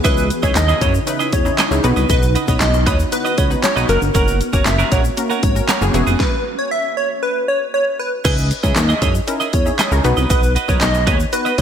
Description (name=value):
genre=dance-pop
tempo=117 BPM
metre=4/4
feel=straight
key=C# dorian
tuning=A4 = 441 Hz
part: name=plucky unison lead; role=melody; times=0.0-11.6 s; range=A#4 to E5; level=-21 LUFS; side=equal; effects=sidechain pumping, ping-pong delay
part: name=funky polysynth comp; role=accompaniment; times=0.0-11.5 s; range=A#3 to C#5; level=-24 LUFS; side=left 2 dB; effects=chorus, sidechain pumping
part: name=ethereal airy pad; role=sustained chords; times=0.0-6.2 s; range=C#3 to F#4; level=-26 LUFS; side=equal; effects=ensemble chorus, built-in reverb, sidechain pumping
part: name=twelve-string electric guitar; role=riff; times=0.0-11.6 s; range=B3 to D#5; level=-23 LUFS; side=right 6 dB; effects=wide subtle chorus
part: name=chorused synth bass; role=bass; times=0.0-11.6 s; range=E1 to F#2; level=-18 LUFS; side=equal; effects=sidechain pumping
part: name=pop drum kit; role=drums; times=0.0-11.6 s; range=crash cymbal, handclaps, hi-hat, kick drum, snare drum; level=-18 LUFS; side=equal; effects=gated reverb
part: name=egg shaker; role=percussion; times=0.0-11.6 s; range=none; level=-32 LUFS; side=left 10 dB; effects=none
room=light reverb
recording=bright 1980s-style digital production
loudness=-14 LUFS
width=side -8 dB against mid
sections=0.0-8.3 A section; 8.3-11.6 A section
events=drop 0.0-8.3, 8.3-11.6; stop 6.2-8.3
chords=0.0 C#madd9; 1.8 B; 3.9 F#; 5.9 Eadd9; 8.3 C#madd9; 10.0 B